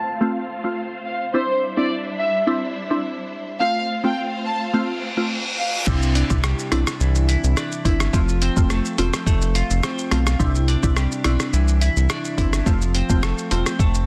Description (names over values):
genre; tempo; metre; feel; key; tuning
dancehall; 106 BPM; 4/4; straight; C major; A4 = 441 Hz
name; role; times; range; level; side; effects
warm chamber violin section; melody; 0.0-5.7 s; C5 to A5; -26 LUFS; equal; low-pass filter, tape echo
warm studio string section; sustained chords; 0.0-5.8 s; G3 to F5; -32 LUFS; equal; sidechain pumping, low-pass filter
downlifter and reverse cymbal; sound effects; 0.0-1.3, 4.9-5.9 s; none; -29 LUFS; equal; none
glassy wavetable pluck; accompaniment; 0.2-13.7 s; A3 to F4; -27 LUFS; equal; chorus, sidechain pumping, low-pass filter
twelve-string electric guitar; arpeggios; 5.9-14.1 s; C3 to F4; -29 LUFS; equal; analog chorus
round analog bass; bass; 5.9-14.1 s; E1 to C2; -22 LUFS; equal; none
lo-fi sampler-style drum kit; drums; 5.9-14.1 s; crash cymbal, hi-hat, kick drum, rim click, shaker; -25 LUFS; equal; soft clipping on snare
room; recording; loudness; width
light reverb; dense, heavily limited modern master; -21 LUFS; mono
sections
0.0-5.9 A section; 5.9-14.1 B section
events
filter sweep 0.0-5.9; reverse cymbal 4.9-5.9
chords
0.0 F; 1.3 Cadd9; 3.6 F; 5.9 Cadd9; 8.1 F; 10.4 Cadd9; 12.7 F